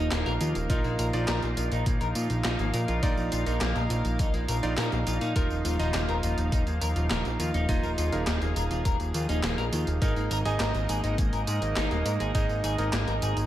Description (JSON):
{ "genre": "synthwave", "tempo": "103 BPM", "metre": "4/4", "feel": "straight", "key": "unclear", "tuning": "A4 = 440 Hz", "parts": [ { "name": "chorused pulse-width pad", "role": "sustained chords", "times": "0.0-13.5 s", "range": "F3 to F5", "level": "-33 LUFS", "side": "right 2 dB", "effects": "sidechain pumping" }, { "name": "clean electric guitar", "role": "arpeggios", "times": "0.0-13.4 s", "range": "Bb3 to Bb4", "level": "-34 LUFS", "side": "left 2 dB", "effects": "phaser, tape echo" }, { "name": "fat analog bass", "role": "bass", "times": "0.0-13.5 s", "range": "Eb1 to Bb2", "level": "-28 LUFS", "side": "equal", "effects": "tube saturation" }, { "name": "gated 80s digital drum machine", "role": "drums", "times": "0.1-13.5 s", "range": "handclaps, hi-hat, snare drum, tambourine", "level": "-33 LUFS", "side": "equal", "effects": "gated reverb, gated reverb snare" }, { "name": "bright electric grand piano", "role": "stabs", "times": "0.7-12.9 s", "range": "Eb4 to Eb5", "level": "-35 LUFS", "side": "right 3 dB", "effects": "tape echo" }, { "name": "electronic kick drum", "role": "drums", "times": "0.7-12.5 s", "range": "none", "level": "-27 LUFS", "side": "equal", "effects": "overdrive" } ], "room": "light reverb", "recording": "none", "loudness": "-25 LUFS", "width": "side -13 dB against mid", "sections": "0.0-13.5 A section", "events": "none", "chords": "0.0 Ebsus2; 0.7 Bbsus4; 5.4 Ebsus2; 10.0 Absus2" }